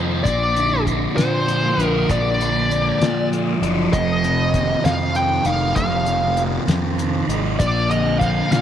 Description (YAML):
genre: psychedelic rock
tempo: 65 BPM (dotted quarters)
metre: 6/8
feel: straight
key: unclear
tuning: A4 = 440 Hz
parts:
  - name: thick fuzz guitar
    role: riff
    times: 0.0-8.6 s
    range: F2 to Eb4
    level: -21 LUFS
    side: equal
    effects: distortion, phaser
  - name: fuzz fingered electric bass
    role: bass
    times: 0.0-8.6 s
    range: F1 to Bb2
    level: -23 LUFS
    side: equal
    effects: overdrive
  - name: fuzz lead guitar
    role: melody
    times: 0.2-8.6 s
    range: C5 to G5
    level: -21 LUFS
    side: left 1 dB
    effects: wah, distortion, slapback echo
  - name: cloth-damped thuddy drum kit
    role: drums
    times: 0.3-8.6 s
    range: hi-hat, kick drum, snare drum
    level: -22 LUFS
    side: left 2 dB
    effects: none
room: light reverb, studio ambience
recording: 1960s-style stereo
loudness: -17 LUFS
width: side -10 dB against mid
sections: 0.0-8.6 A section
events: none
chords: 0.3 Bbadd9; 3.9 F7(no3); 7.6 Bb